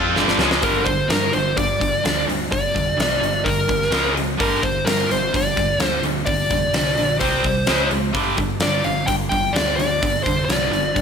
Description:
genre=hard rock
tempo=128 BPM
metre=4/4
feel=straight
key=unclear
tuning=A4 = 439 Hz
part: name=overdriven tonewheel organ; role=sustained chords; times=0.0-0.6 s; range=G3 to A4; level=-32 LUFS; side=left 1 dB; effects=none
part: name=cranked stack guitar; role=riff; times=0.0-11.0 s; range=G2 to F4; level=-27 LUFS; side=left 11 dB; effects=overdrive
part: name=overdriven electric guitar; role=riff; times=0.0-11.0 s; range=G2 to F4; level=-25 LUFS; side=right 10 dB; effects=none
part: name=hollow-body short-scale picked electric bass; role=bass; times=0.0-11.0 s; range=F1 to G2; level=-28 LUFS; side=equal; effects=none
part: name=huge arena drum kit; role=drums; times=0.2-11.0 s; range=hi-hat, kick drum, snare drum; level=-22 LUFS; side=left 1 dB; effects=none
part: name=dark smooth lead guitar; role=melody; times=0.6-11.0 s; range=Bb4 to G5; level=-21 LUFS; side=equal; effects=overdrive, analog delay
room=light reverb, small room ambience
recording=none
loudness=-17 LUFS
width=side -6 dB against mid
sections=0.6-11.0 A section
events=drum fill 0.2-0.6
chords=0.0 G5; 0.6 Gm; 3.9 C#5; 4.4 G5; 7.2 C5; 7.7 C#5; 8.1 G5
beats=0.17 | 0.64 1.11 1.57 2.04 | 2.52 2.99 3.46 3.92 | 4.39 4.87 5.33 5.80 | 6.27 6.74 7.21 7.68 | 8.15 8.62 9.08 9.55 | 10.02 10.49 10.96

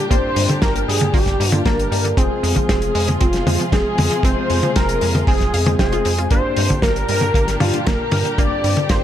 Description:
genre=italo disco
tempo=116 BPM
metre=4/4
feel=straight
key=unclear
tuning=A4 = 440 Hz
part: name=wide unison lead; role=melody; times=0.0-9.0 s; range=F4 to D5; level=-21 LUFS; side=equal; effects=cassette tape, tape echo
part: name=dark chamber string section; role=sustained chords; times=0.0-9.0 s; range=Bb2 to Ab4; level=-26 LUFS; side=equal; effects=none
part: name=wide unison pluck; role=arpeggios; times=0.0-9.0 s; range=D3 to F5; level=-28 LUFS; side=right 3 dB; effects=vintage 12-bit sampler grit, ping-pong delay
part: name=tine electric piano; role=stabs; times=0.1-9.0 s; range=G2 to D5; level=-26 LUFS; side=left 4 dB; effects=medium stereo tremolo
part: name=round analog bass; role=bass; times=0.1-9.0 s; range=F1 to G2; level=-22 LUFS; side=equal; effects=none
part: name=kick drum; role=drums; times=0.1-9.0 s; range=none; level=-19 LUFS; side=equal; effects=none
part: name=warm soul drum kit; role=drums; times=0.1-9.0 s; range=hi-hat, snare drum, toms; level=-22 LUFS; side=left 1 dB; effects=none
room=light reverb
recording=none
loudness=-15 LUFS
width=side -11 dB against mid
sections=0.0-9.0 A section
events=none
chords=0.0 Gm; 2.2 Fm; 6.3 Gm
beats=| 0.10 0.62 1.14 1.66 | 2.17 2.69 3.21 3.73 | 4.24 4.76 5.28 5.79 | 6.31 6.83 7.35 7.86 | 8.38 8.90

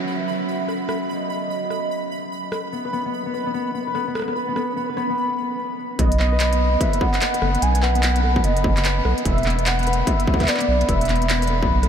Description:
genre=IDM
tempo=147 BPM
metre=4/4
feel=swing 62% on 16ths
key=B major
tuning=A4 = 440 Hz
part: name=warm velvety synth lead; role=melody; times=0.0-2.5, 6.0-11.3 s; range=D5 to G#5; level=-26 LUFS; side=right 2 dB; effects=chorus, analog delay
part: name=concert harp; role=arpeggios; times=0.0-11.9 s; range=B3 to B4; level=-24 LUFS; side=left 2 dB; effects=tape echo
part: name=pulsing gated texture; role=texture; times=0.0-5.2 s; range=B5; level=-34 LUFS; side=right 4 dB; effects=chorus, built-in reverb
part: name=industrial drum kit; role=drums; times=0.7-11.9 s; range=handclaps, hi-hat, rim click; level=-27 LUFS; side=equal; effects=tape echo
part: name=round analog bass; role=bass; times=6.0-11.9 s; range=E1 to B1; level=-20 LUFS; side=equal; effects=none
part: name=electronic kick drum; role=drums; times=6.0-11.7 s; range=none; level=-22 LUFS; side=equal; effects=distortion
room=moderate huge ambient reverb, RT60 8.2 s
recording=dreamy mix soaked in reverb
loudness=-19 LUFS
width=side -8 dB against mid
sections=0.0-6.0 A section; 6.0-11.9 B section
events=none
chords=0.0 N.C.; 6.0 B; 9.3 E5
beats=0.28 0.68 | 1.09 1.50 1.91 2.32 | 2.73 3.13 3.54 3.95 | 4.36 4.77 5.17 5.58 | 5.99 6.40 6.81 7.21 | 7.62 8.03 8.44 8.85 | 9.26 9.66 10.07 10.48 | 10.89 11.30 11.70

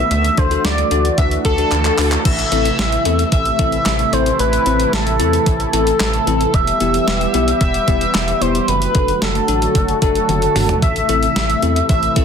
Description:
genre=synth-pop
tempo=112 BPM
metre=4/4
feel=straight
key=unclear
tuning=A4 = 442 Hz
part: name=octave-doubled lead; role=melody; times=0.0-12.2 s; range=A4 to E5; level=-18 LUFS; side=equal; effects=chorus, ping-pong delay
part: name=sweeping resonant pad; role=sustained chords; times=0.0-12.2 s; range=C3 to G4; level=-22 LUFS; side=right 2 dB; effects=chorus
part: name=rubbery square bass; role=bass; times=0.0-12.2 s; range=E1 to E2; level=-21 LUFS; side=equal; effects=none
part: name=clean 12-bit digital drum machine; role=drums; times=0.1-12.2 s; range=crash cymbal, handclaps, hi-hat, kick drum, snare drum, toms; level=-19 LUFS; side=equal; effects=none
part: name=bell-like tine electric piano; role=accompaniment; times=0.4-12.2 s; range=B3 to C5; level=-23 LUFS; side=left 10 dB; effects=none
room=light reverb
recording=dense, heavily limited modern master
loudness=-13 LUFS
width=side -7 dB against mid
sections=0.0-2.3 A section; 2.3-12.2 B section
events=drum fill 1.7-2.3, 10.3-10.8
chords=0.1 Dadd9; 2.3 Am; 6.5 Em; 8.7 D/F#; 10.8 Am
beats=| 0.11 0.65 1.18 1.72 | 2.25 2.79 3.32 3.86 | 4.40 4.93 5.47 6.00 | 6.54 7.07 7.61 8.15 | 8.68 9.22 9.75 10.29 | 10.82 11.36 11.90

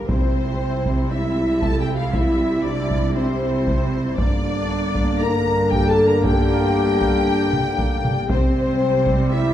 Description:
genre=cinematic, epic orchestral film score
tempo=117 BPM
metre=4/4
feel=straight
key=unclear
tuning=A4 = 441 Hz
part: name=rich studio violin section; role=melody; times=0.0-9.5 s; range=C5 to Bb5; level=-29 LUFS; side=left 3 dB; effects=none
part: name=rich symphonic violin section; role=second line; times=0.0-9.5 s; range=C5 to Bb5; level=-31 LUFS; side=left 2 dB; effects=none
part: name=warm symphonic viola section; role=accompaniment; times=0.0-9.5 s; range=G3 to E4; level=-27 LUFS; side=right 1 dB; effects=none
part: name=clear trombone section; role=sustained chords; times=0.0-9.5 s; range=C3 to Bb3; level=-30 LUFS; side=right 3 dB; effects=none
part: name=mellow French horn section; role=sustained chords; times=0.0-9.5 s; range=C4 to Bb4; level=-22 LUFS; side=left 2 dB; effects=none
part: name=rich symphonic cello section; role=bass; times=0.0-9.5 s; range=G2 to C3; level=-26 LUFS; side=right 2 dB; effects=none
part: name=rich symphonic double bass section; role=bass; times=0.0-9.5 s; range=G1 to C2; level=-28 LUFS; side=right 2 dB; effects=none
part: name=solo taiko drums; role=drums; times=0.1-9.5 s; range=none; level=-24 LUFS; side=equal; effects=none
room=wet recital hall reverb, RT60 1.6 s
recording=recorded in a church or concert hall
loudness=-17 LUFS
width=side -11 dB against mid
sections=0.0-9.5 A section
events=none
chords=0.1 C; 4.2 Gm; 8.3 C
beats=| 0.09 0.60 1.11 1.62 | 2.13 2.65 3.16 3.67 | 4.18 4.69 5.20 5.72 | 6.23 6.75 7.27 7.78 | 8.29 8.81 9.32

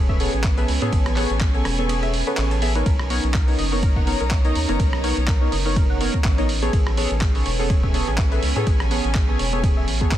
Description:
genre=deep house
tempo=124 BPM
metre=4/4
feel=swing 56% on 16ths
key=unclear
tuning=A4 = 439 Hz
part: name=deep dark ambient pad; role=sustained chords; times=0.0-10.2 s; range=C#4 to G#5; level=-32 LUFS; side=right 3 dB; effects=chorus, built-in reverb, sidechain pumping
part: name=warbly dusty pluck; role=arpeggios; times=0.0-10.1 s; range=G#4 to A5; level=-33 LUFS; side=left 3 dB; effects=chorus, sidechain pumping, dub echo
part: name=deep mellow chord stab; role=stabs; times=0.0-10.2 s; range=B3 to E5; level=-26 LUFS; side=equal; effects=chorus, sidechain pumping, digital delay
part: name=round analog bass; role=bass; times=0.0-10.2 s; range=E1 to A2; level=-24 LUFS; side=equal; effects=sidechain pumping
part: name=warm chamber string section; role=texture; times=0.0-10.2 s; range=B3 to A#5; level=-31 LUFS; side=right 1 dB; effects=sidechain pumping
part: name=electronic kick drum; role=drums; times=0.1-10.2 s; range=none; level=-20 LUFS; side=equal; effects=studio ambience
part: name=dusty soul sampler-style drum kit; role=drums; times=0.2-10.2 s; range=handclaps, hi-hat, ride cymbal, rim click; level=-29 LUFS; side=right 2 dB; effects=studio ambience
room=little or no reverb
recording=dense, heavily limited modern master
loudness=-18 LUFS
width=side -12 dB against mid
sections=0.0-10.2 A section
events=kick drops out 1.9-2.9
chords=0.0 Amaj9; 2.9 Bmaj9; 6.5 Amaj9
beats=0.44 | 0.93 1.41 1.89 2.38 | 2.86 3.35 3.83 4.31 | 4.80 5.28 5.76 6.25 | 6.73 7.22 7.70 8.18 | 8.67 9.15 9.64 10.12

